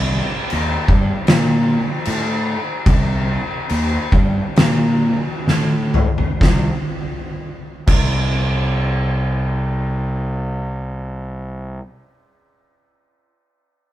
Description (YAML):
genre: stoner and doom metal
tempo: 61-79 BPM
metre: 4/4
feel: straight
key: C dorian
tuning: A4 = 439 Hz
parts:
  - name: fuzz picked electric bass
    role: bass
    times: 0.0-11.8 s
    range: C2 to Bb2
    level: -20 LUFS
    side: equal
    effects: overdrive
  - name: oversized low-tuned drum kit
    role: drums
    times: 0.5-8.2 s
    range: crash cymbal, kick drum, snare drum, toms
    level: -18 LUFS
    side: equal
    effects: none
room: light reverb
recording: band playing live in one room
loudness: -16 LUFS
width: side -13 dB against mid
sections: 0.0-6.4 A section; 6.4-10.3 B section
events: slowing down 0.0-6.4; drum fill 5.5-6.4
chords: none